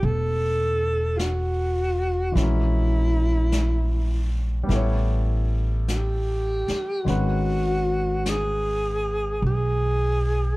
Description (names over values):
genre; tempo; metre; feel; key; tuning
jazz ballad; 51 BPM; 4/4; swing 69% on 8ths; unclear; A4 = 440 Hz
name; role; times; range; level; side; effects
breathy alto saxophone; melody; 0.0-10.6 s; E4 to A4; -26 LUFS; equal; none
warm concert grand piano; accompaniment; 0.0-10.6 s; D#3 to C#5; -30 LUFS; left 2 dB; none
upright bass; bass; 0.0-10.6 s; E1 to B1; -23 LUFS; equal; none
jazz brush drum kit; drums; 0.0-10.6 s; brushed snare drum, hi-hat, snare drum; -36 LUFS; left 2 dB; none
room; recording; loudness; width
little or no reverb; dark, warm production; -21 LUFS; side -20 dB against mid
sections
0.0-10.6 A section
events
none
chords
0.0 A5; 2.4 A#m7b5; 4.7 A9; 7.1 G#m7